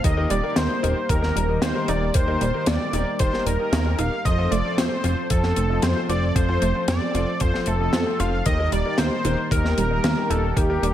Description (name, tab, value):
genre	synthwave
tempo	114 BPM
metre	4/4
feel	straight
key	unclear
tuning	A4 = 441 Hz
part	wide unison lead	melody	0.0-10.9 s	G4 to F5	-26 LUFS	equal	digital delay
part	chorused pulse-width pad	sustained chords	0.0-10.9 s	Eb3 to C5	-30 LUFS	equal	sidechain pumping
part	wide unison pluck	arpeggios	0.0-10.9 s	Eb3 to F4	-31 LUFS	right 4 dB	none
part	warm grand piano	stabs	0.0-10.8 s	Eb3 to Eb5	-29 LUFS	left 4 dB	vintage 12-bit sampler grit
part	chorused synth bass	bass	0.0-10.9 s	Eb1 to F2	-24 LUFS	equal	none
part	deep reggae drum kit	drums	0.0-10.9 s	hi-hat, snare drum	-26 LUFS	left 1 dB	gated reverb
part	electronic kick drum	drums	0.0-10.7 s	none	-23 LUFS	equal	none
room	light reverb, small room ambience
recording	none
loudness	-19 LUFS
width	side -11 dB against mid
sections	0.0-10.9 A section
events	none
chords	0.0 Eb; 4.3 F; 8.5 Eb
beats	| 0.04 0.57 1.09 1.62 | 2.15 2.67 3.20 3.73 | 4.25 4.78 5.30 5.83 | 6.36 6.88 7.41 7.93 | 8.46 8.99 9.51 10.04 | 10.57